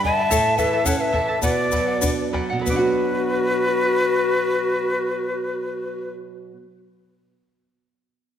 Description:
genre	andean folk, Andean ensemble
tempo	89-111 BPM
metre	2/4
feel	straight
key	B minor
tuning	A4 = 439 Hz
part	breathy quena	melody	0.0-6.1 s	B4 to A5	-23 LUFS	equal	none
part	polished pan flute	second line	0.0-6.1 s	F#4 to E5	-24 LUFS	left 4 dB	none
part	charango	accompaniment	0.0-6.8 s	E4 to B5	-28 LUFS	right 2 dB	none
part	nylon-string guitar	accompaniment	0.0-6.8 s	G2 to F#4	-26 LUFS	right 4 dB	none
part	bombo	percussion	0.0-3.0 s	none	-28 LUFS	left 2 dB	none
part	egg shaker	percussion	0.3-3.0 s	none	-31 LUFS	left 6 dB	none
room	wet scoring stage reverb, RT60 1.9 s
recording	none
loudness	-19 LUFS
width	side -9 dB against mid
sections	0.0-2.7 A section; 2.7-5.4 B section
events	slowing down 0.3-2.7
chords	0.3 A; 1.4 Bm

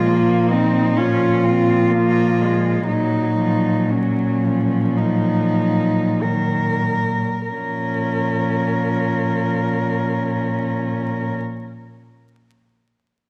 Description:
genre	classical, lyrical piece for cello ensemble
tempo	45-67 BPM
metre	4/4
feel	rubato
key	Bb minor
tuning	A4 = 439 Hz
part	warm cello	melody	0.0-11.3 s	Db4 to Bb4	-24 LUFS	equal	none
part	warm cello	second line	0.0-11.3 s	F3 to Db4	-27 LUFS	equal	none
part	rich cello	accompaniment	0.0-11.3 s	Eb3 to Db4	-27 LUFS	equal	none
part	warm cello	bass	0.0-11.3 s	Bb2	-24 LUFS	equal	none
room	moderate scoring stage reverb, RT60 1.9 s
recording	worn, warbling old tape, cassette tape, vinyl crackle, warbly pitch drift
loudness	-19 LUFS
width	mono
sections	0.0-7.5 A section; 7.5-12.4 B section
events	slowing down 0.0-7.5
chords	0.0 Bb5; 2.9 Ebm/Bb; 7.5 Bbm

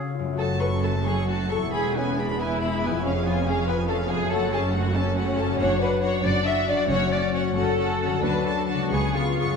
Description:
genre	classical, dramatic, fast romantic movement for symphony orchestra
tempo	92 BPM (dotted quarters)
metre	6/8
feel	uneven beats, rubato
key	F# minor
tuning	A4 = 440 Hz
part	concert harp	arpeggios	0.0-9.6 s	E2 to D5	-28 LUFS	left 6 dB	none
part	rich chamber violin section	melody	0.4-9.6 s	E#5 to C#6	-33 LUFS	left 1 dB	none
part	dark symphonic violin section	second line	0.4-9.6 s	C#4 to E5	-26 LUFS	left 2 dB	none
part	rich symphonic viola section	accompaniment	0.4-9.6 s	F#3 to B4	-30 LUFS	right 1 dB	none
part	clear symphonic double bass section	bass	0.4-9.5 s	E1 to D2	-30 LUFS	right 3 dB	none
part	rich symphonic cello section	bass	0.4-9.5 s	C#2 to F#2	-31 LUFS	right 3 dB	none
part	timpani	percussion	6.9-7.5 s	F#2	-34 LUFS	left 1 dB	none
room	wet concert hall reverb, RT60 2.4 s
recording	minimal, uncompressed stereo recording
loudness	-21 LUFS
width	side -5 dB against mid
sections	0.4-9.6 A section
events	none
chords	0.4 F#m; 1.7 E; 3.0 C#7/E#; 4.3 F#m; 5.6 Dmaj7/F#; 6.9 F#m; 8.2 D; 8.9 C#7

